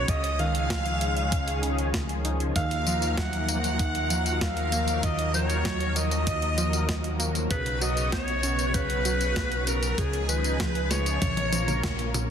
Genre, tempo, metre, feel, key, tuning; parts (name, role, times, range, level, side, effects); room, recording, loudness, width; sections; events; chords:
synthwave; 97 BPM; 4/4; straight; Eb minor; A4 = 440 Hz
growling alto saxophone; melody; 0.0-12.1 s; Ab4 to Gb5; -30 LUFS; equal; ping-pong delay
string machine, violins; second line; 0.0-12.1 s; Ab4 to Gb5; -36 LUFS; equal; ensemble chorus, tape echo
analog string pad; sustained chords; 0.0-12.3 s; C#3 to C#5; -32 LUFS; left 1 dB; ensemble chorus, sidechain pumping
analog pluck; arpeggios; 0.0-12.3 s; Db3 to Eb4; -35 LUFS; right 3 dB; chorus, tape echo
chorused synth bass; bass; 0.0-12.3 s; Bb1 to Eb2; -29 LUFS; equal; sidechain pumping
clean 12-bit digital drum machine; drums; 0.1-12.3 s; hi-hat, snare drum, tambourine, toms; -31 LUFS; left 1 dB
electronic kick drum; drums; 0.1-12.0 s; -30 LUFS; equal
light reverb; dense, heavily limited modern master; -24 LUFS; side -8 dB against mid
0.0-12.3 A section
drum fill 11.2-12.3; band accent 11.8-12.1
0.1 Dbadd9; 2.6 Ebmadd9; 7.5 Bsus2; 10.0 Dbadd9; 11.2 Bbm